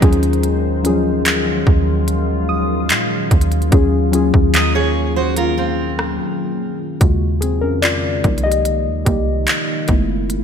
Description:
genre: contemporary R&B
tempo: 73 BPM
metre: 4/4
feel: straight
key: unclear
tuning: A4 = 439 Hz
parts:
  - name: muted felt-like synth keys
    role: accompaniment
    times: 0.0-10.4 s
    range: Db3 to Eb5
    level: -20 LUFS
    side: left 4 dB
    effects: chorus
  - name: deep dark ambient pad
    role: sustained chords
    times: 0.0-10.4 s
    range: Db3 to F5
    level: -23 LUFS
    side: left 1 dB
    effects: chorus, built-in reverb
  - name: clean 808-style bass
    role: bass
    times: 0.0-10.4 s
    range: Gb1 to Bb2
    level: -19 LUFS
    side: right 1 dB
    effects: none
  - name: trap drum kit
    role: drums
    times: 0.0-10.4 s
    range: handclaps, hi-hat, kick drum, rim click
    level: -17 LUFS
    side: right 1 dB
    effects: gated reverb
  - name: soft round pluck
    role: texture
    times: 2.5-3.8 s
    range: Eb6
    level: -28 LUFS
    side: right 1 dB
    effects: chorus, ping-pong delay
  - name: fingerpicked steel-string acoustic guitar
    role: arpeggios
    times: 4.5-6.8 s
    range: C4 to Eb5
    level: -21 LUFS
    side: right 4 dB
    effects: ping-pong delay
room: light reverb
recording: bright 1980s-style digital production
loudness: -14 LUFS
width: side -7 dB against mid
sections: 0.0-7.0 A section; 7.0-10.4 B section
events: break 6.2-7.0; synth keys solo 7.0-10.4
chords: 0.0 Ebm11; 8.2 Cm11; 9.9 Gbm11

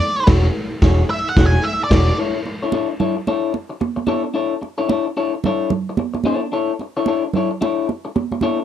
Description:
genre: funk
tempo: 111 BPM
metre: 4/4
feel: swing 60% on 16ths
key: unclear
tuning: A4 = 440 Hz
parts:
  - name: octave-fuzz lead guitar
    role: melody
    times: 0.0-2.2 s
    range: D5 to G#5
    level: -20 LUFS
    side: right 1 dB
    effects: distortion
  - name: electric guitar at the edge of break-up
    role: accompaniment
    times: 0.3-8.6 s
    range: D4 to C#5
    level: -20 LUFS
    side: left 5 dB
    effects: none
  - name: picked electric bass with an envelope filter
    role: bass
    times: 0.3-2.1 s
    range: E1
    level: -15 LUFS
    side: equal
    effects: none
  - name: raw garage drum kit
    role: drums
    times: 0.3-2.1 s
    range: crash cymbal, kick drum, snare drum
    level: -19 LUFS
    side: equal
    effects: none
  - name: congas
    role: percussion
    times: 2.5-8.6 s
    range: none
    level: -22 LUFS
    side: right 6 dB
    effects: none
room: moderate studio ambience, RT60 0.5 s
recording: dark, warm production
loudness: -17 LUFS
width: side -10 dB against mid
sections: 0.0-2.2 A section; 2.2-8.6 B section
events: lead electric guitar solo 0.0-2.2; band accent 0.0-2.2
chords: 0.0 E13; 2.2 Aadd11/D

